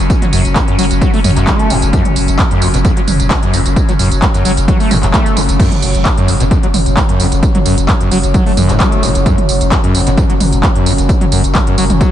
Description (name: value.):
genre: driving peak-time techno.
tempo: 131 BPM.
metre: 4/4.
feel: straight.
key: F# harmonic minor.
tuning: A4 = 439 Hz.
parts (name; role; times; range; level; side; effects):
saturated sub bass; bass; 0.0-12.0 s; F#1; -17 LUFS; equal; overdrive, sidechain pumping, low-pass filter.
overtone-sweeping drone; drone; 0.0-12.1 s; F#3 to C#4; -20 LUFS; left 1 dB; chorus, built-in reverb, sidechain pumping.
electronic kick drum; drums; 0.1-12.1 s; none; -14 LUFS; equal; none.
techno drum kit; drums; 0.1-12.1 s; crash cymbal, handclaps, hi-hat, tambourine, toms; -17 LUFS; right 1 dB; overdrive.
overdriven acid bass; riff; 0.2-12.1 s; E#2 to A3; -16 LUFS; equal; distortion, lush chorus, sidechain pumping, ping-pong delay.
room: moderate cathedral reverb, RT60 5.4 s.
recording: dreamy mix soaked in reverb, nothing above 10.6 kHz.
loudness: -9 LUFS.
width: side -11 dB against mid.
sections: 0.0-12.1 A section.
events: none.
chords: 0.0 F#5.